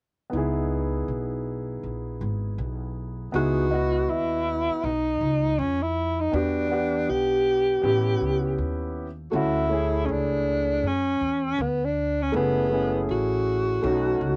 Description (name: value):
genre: hip hop, jazz-hop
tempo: 80 BPM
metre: 4/4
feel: swing 63% on 16ths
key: unclear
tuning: A4 = 439 Hz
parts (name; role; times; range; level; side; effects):
- dark baby grand piano; accompaniment; 0.3-14.4 s; A3 to F#5; -31 LUFS; equal; cassette tape
- upright bass; bass; 0.3-14.4 s; F#1 to F#2; -31 LUFS; equal; none
- mellow alto saxophone; melody; 3.4-14.4 s; B3 to G4; -26 LUFS; equal; cassette tape
room: moderate booth ambience, RT60 0.2 s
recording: home recording on cassette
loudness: -25 LUFS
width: mono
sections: 0.3-3.3 A section; 3.3-14.4 B section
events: none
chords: 0.3 C#m9; 6.3 Em7; 7.8 A7; 9.3 Dmaj9; 12.3 F#m7; 13.8 B7